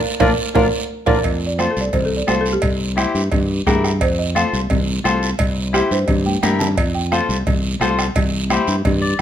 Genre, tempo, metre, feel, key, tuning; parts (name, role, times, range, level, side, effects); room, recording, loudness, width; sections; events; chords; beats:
latin, cumbia; 174 BPM; 4/4; straight; F major; A4 = 438 Hz
folk marimba with medium mallets; melody; 0.2-8.1 s; G4 to A5; -21 LUFS; right 2 dB
accordion; second line; 0.2-1.2 s; D4 to Bb4; -26 LUFS; right 1 dB
semi-hollow electric guitar; accompaniment; 0.2-9.2 s; E4 to D5; -22 LUFS; left 4 dB
modern bright fingered electric bass; bass; 0.2-9.1 s; Bb1 to G2; -21 LUFS; equal
bombo; percussion; 0.2-9.2 s; -22 LUFS; equal
congas; percussion; 0.2-9.0 s; -26 LUFS; left 2 dB
guiro; percussion; 0.2-9.2 s; -30 LUFS; right 5 dB
timbales and cowbell; percussion; 0.2-9.0 s; -26 LUFS; right 4 dB
light reverb; -16 LUFS; side -10 dB against mid
0.0-1.2 A section; 1.2-9.2 B section
band accent 0.0-1.2; drum fill 0.4-1.2, 6.3-6.8; marimba solo 1.2-9.2; clean electric guitar fill 8.9-9.2
0.0 Bb; 1.2 F; 2.6 C7; 4.0 F; 5.4 C7; 6.8 F; 8.2 C
0.21 0.56 0.90 | 1.25 1.59 1.94 2.29 | 2.63 2.98 3.32 3.67 | 4.01 4.36 4.71 5.05 | 5.40 5.74 6.09 6.43 | 6.78 7.12 7.47 7.82 | 8.16 8.51 8.85 9.20